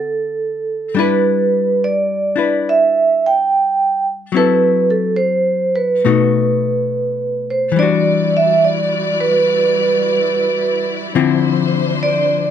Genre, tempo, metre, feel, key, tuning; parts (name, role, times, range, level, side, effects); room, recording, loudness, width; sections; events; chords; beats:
jazz ballad; 71 BPM; 4/4; swing 67% on 8ths; A4 = 440 Hz
vibraphone with medium hard mallets; melody; 0.0-12.5 s; A4 to G5; -15 LUFS; right 4 dB
archtop guitar, miked and amplified; accompaniment; 0.0-12.5 s; B2 to B4; -18 LUFS; left 9 dB
warm symphonic string section; sustained chords; 7.8-12.5 s; F3 to D5; -22 LUFS; left 2 dB
little or no reverb; close, detailed microphones; -13 LUFS; side -9 dB against mid
0.0-7.7 A section; 7.7-12.5 B section
0.0 D6; 1.0 G6; 4.3 F#m7b5; 6.0 B7; 7.7 Em9; 11.1 Dm9
0.12 | 0.96 1.80 2.64 3.48 | 4.32 5.17 6.03 6.89 | 7.75 8.60 9.45 10.29 | 11.14 11.98